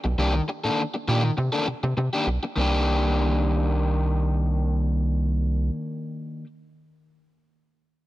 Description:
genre	funk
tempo	101 BPM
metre	4/4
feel	straight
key	C minor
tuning	A4 = 440 Hz
part	overdriven semi-hollow guitar	accompaniment	0.0-6.5 s	Eb3 to A4	-25 LUFS	left 2 dB	none
part	rubbery square bass	bass	0.1-5.7 s	B1 to C3	-23 LUFS	right 1 dB	none
room	little or no reverb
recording	none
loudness	-22 LUFS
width	side -16 dB against mid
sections	0.0-2.6 A section; 2.6-4.9 B section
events	none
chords	0.0 Cm9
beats	| 0.19 0.78 1.38 1.97 | 2.56 3.16 3.75 4.34

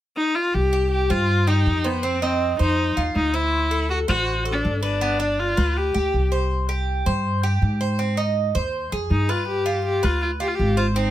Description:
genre	latin, Cuban son and guajira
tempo	161 BPM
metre	4/4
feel	straight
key	C harmonic minor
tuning	A4 = 440 Hz
part	warm viola	melody	0.2-6.3, 9.1-11.1 s	B3 to G4	-22 LUFS	left 2 dB	none
part	upright bass	bass	0.5-11.1 s	G1 to Ab2	-23 LUFS	equal	none
part	Cuban tres	arpeggios	0.7-11.1 s	B3 to C5	-26 LUFS	right 3 dB	none
room	little or no reverb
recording	close, detailed microphones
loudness	-19 LUFS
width	side -13 dB against mid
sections	0.5-11.1 A section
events	none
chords	0.0 N.C.; 0.5 Cm; 2.0 F5; 3.5 D7; 5.0 G; 6.5 C5; 8.0 Ab; 9.5 G7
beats	0.17 | 0.55 0.92 1.29 1.67 | 2.04 2.41 2.78 3.16 | 3.53 3.90 4.27 4.64 | 5.02 5.39 5.76 6.13 | 6.50 6.88 7.25 7.62 | 7.99 8.36 8.73 9.11 | 9.48 9.85 10.22 10.59 | 10.96

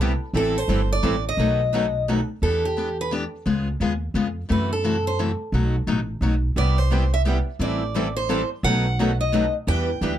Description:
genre	acoustic string swing (jazz manouche)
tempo	174 BPM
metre	3/4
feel	swing 62% on 8ths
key	E minor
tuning	A4 = 440 Hz
part	picked steel-string acoustic guitar	accompaniment	0.0-10.1 s	B2 to A4	-25 LUFS	left 4 dB	none
part	picked steel-string acoustic guitar	accompaniment	0.0-2.2, 6.6-10.1 s	B2 to B4	-29 LUFS	right 6 dB	none
part	upright bass	bass	0.0-10.2 s	G1 to F#2	-24 LUFS	right 1 dB	none
part	picked steel-string acoustic guitar	melody	0.4-10.2 s	G4 to G5	-26 LUFS	equal	none
room	light reverb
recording	dark, warm production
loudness	-20 LUFS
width	side -11 dB against mid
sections	0.0-2.4 A section; 2.4-10.2 B section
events	steel-string acoustic guitar solo 2.4-10.2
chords	0.3 Am7; 1.4 B7; 2.4 Em7; 3.5 C#7; 4.5 F#m7b5; 5.5 B7; 6.6 Cmaj7; 7.6 Am7; 8.6 B7; 9.7 Em7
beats	0.00 | 0.34 0.69 1.04 | 1.38 1.73 2.08 | 2.42 2.77 3.11 | 3.46 3.81 4.15 | 4.50 4.84 5.19 | 5.54 5.88 6.23 | 6.57 6.92 7.26 | 7.61 7.95 8.30 | 8.64 8.99 9.33 | 9.68 10.02

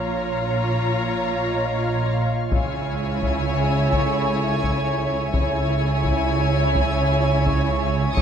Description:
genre	cinematic, suspense film score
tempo	85 BPM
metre	4/4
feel	straight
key	unclear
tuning	A4 = 440 Hz
part	rich studio violin section	melody	0.0-8.2 s	G#5 to A#5	-30 LUFS	left 4 dB	none
part	rich studio violin section	second line	0.0-8.2 s	C#5	-28 LUFS	equal	none
part	rich studio viola section	accompaniment	0.0-8.2 s	E4 to E#4	-29 LUFS	right 2 dB	none
part	shimmering ambient pad	sustained chords	0.0-8.2 s	E#4 to G#5	-29 LUFS	equal	chorus, built-in reverb
part	rich studio cello section	bass	0.0-8.2 s	A2 to C#3	-25 LUFS	right 2 dB	none
part	rich studio double bass section	bass	0.0-8.2 s	A1 to C#2	-26 LUFS	right 2 dB	none
part	vibraphone with soft mallets	texture	0.0-8.2 s	G#4 to C#6	-34 LUFS	right 2 dB	none
part	solo taiko drums	drums	2.5-8.2 s	none	-26 LUFS	left 2 dB	none
part	rich studio violin section	texture	8.2 s	C#6 to D#6	-27 LUFS	left 1 dB	none
room	moderate scoring stage reverb, RT60 1.5 s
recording	dark, warm production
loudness	-19 LUFS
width	side -8 dB against mid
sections	0.0-2.5 A section; 2.5-8.2 B section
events	none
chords	0.0 A#m; 2.5 C#m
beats	0.40 1.10 1.81 | 2.52 3.22 3.93 4.63 | 5.34 6.04 6.75 7.46 | 8.16

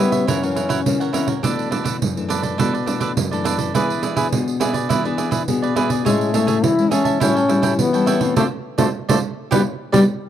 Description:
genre	samba and choro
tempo	104 BPM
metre	4/4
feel	straight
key	A major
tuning	A4 = 442 Hz
part	mellow trombone	second line	0.0-1.1, 6.1-10.0 s	G3 to E4	-20 LUFS	left 4 dB	none
part	cavaquinho	accompaniment	0.0-10.0 s	D4 to A5	-24 LUFS	right 6 dB	none
part	nylon-string guitar	accompaniment	0.0-10.0 s	F#2 to G#4	-22 LUFS	left 4 dB	none
part	pandeiro	percussion	0.1-10.1 s	none	-22 LUFS	right 6 dB	none
room	little or no reverb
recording	dry, close 1970s-style studio recording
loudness	-17 LUFS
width	side -10 dB against mid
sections	0.0-10.3 A section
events	trombone solo 0.0-10.3; band accent 8.4-10.3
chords	0.3 F#7; 1.4 Bm7; 3.7 E7; 6.1 Amaj7; 7.2 A7; 8.4 Dm7; 9.5 G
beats	0.28 0.86 | 1.44 2.02 2.59 3.17 | 3.75 4.32 4.90 5.48 | 6.06 6.63 7.21 7.79 | 8.37 8.94 9.52

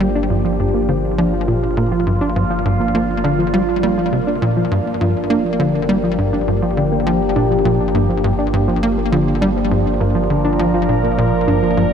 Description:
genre	ambient, sequencer-driven space music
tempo	102 BPM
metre	4/4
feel	straight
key	G minor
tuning	A4 = 440 Hz
part	evolving wavetable pad	sustained chords	0.0-11.9 s	F3 to Bb4	-19 LUFS	right 1 dB	phaser, built-in reverb
part	tight sequencer bass	riff	0.0-11.9 s	G2 to Bb3	-19 LUFS	equal	analog chorus, ping-pong delay
part	warm sub bass	bass	0.0-11.9 s	G1	-25 LUFS	equal	none
part	warbly dusty pluck	arpeggios	0.2-11.9 s	F3 to D4	-22 LUFS	moving between left 3 dB and right 3 dB	chorus, auto-pan, ping-pong delay
room	wet huge ambient reverb, RT60 7.3 s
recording	none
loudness	-14 LUFS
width	side -7 dB against mid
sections	0.0-11.9 A section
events	none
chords	0.0 Gm7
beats	| 0.01 0.59 1.18 1.77 | 2.36 2.95 3.54 4.12 | 4.71 5.30 5.89 6.48 | 7.07 7.65 8.24 8.83 | 9.42 10.01 10.60 11.18 | 11.77

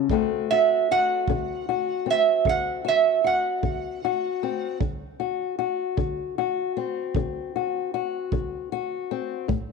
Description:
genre	acoustic country blues, solo or duo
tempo	51 BPM (dotted quarters)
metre	12/8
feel	straight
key	unclear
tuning	A4 = 436 Hz
part	fingerpicked old ladder-braced acoustic guitar	accompaniment	0.0-9.7 s	A2 to G4	-26 LUFS	left 10 dB	none
part	kick drum	drums	0.1-9.7 s	none	-29 LUFS	right 3 dB	none
part	metal-body resonator slide guitar	melody	0.5-4.8 s	E5 to F#5	-21 LUFS	right 7 dB	none
room	light reverb, studio reverb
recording	1960s-style stereo with parts hard left and right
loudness	-22 LUFS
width	side -4 dB against mid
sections	0.0-9.7 A section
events	resonator guitar played with a steel bar solo 0.0-9.7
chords	0.1 D7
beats	| 0.10 1.28 2.46 3.63 | 4.81 5.98 7.16 8.33 | 9.50

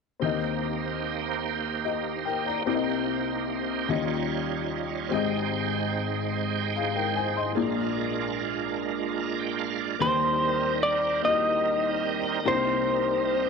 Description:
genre	slow gospel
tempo	49 BPM (dotted quarters)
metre	6/8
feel	straight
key	Eb major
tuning	A4 = 440 Hz
part	warm upright piano	accompaniment	0.2-13.5 s	Ab1 to C6	-29 LUFS	left 7 dB	none
part	bright tonewheel organ	sustained chords	0.2-13.5 s	G3 to Bb5	-29 LUFS	right 10 dB	fast rotary speaker, overdrive, chorus vibrato
part	electric slide guitar	melody	10.0-13.5 s	C5 to Eb5	-24 LUFS	equal	none
room	wet echo chamber reverb, RT60 2.1 s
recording	1960s-style stereo with parts hard left and right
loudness	-25 LUFS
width	side -5 dB against mid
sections	0.2-10.0 A section; 10.0-13.5 B section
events	none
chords	0.2 Eb6; 2.7 Cm7; 3.9 Eb9; 5.1 Abmaj7; 7.6 Bb7; 10.0 Eb6; 12.4 Cm7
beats	| 0.21 1.44 | 2.67 3.89 | 5.12 6.34 | 7.57 8.79 | 10.01 11.23 | 12.45

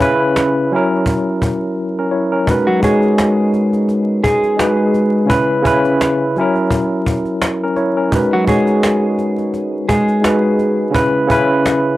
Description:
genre	hip hop, boom-bap hip-hop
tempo	85 BPM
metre	4/4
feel	swing 57% on 16ths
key	unclear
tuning	A4 = 440 Hz
part	tine electric piano	accompaniment	0.0-12.0 s	C#3 to C#5	-14 LUFS	equal	medium stereo tremolo, high-pass filter, low-pass filter
part	cajon	drums	0.0-11.8 s	none	-20 LUFS	equal	none
part	mellow electric guitar	melody	2.7-10.9 s	F#3 to G#4	-16 LUFS	equal	high-pass filter, low-pass filter, analog delay
room	light reverb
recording	dry, gritty hardware recording, vinyl crackle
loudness	-13 LUFS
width	side -16 dB against mid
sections	0.0-12.0 A section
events	break 0.0-2.5; drums muted 1.8-2.5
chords	0.0 C#m7; 0.7 F#7; 2.5 G#m7; 5.3 C#m7; 6.4 F#7; 8.1 G#m7; 10.9 C#m7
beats	0.36 1.06 1.77 | 2.48 3.18 3.89 4.59 | 5.30 6.00 6.71 7.42 | 8.12 8.83 9.53 10.24 | 10.95 11.65

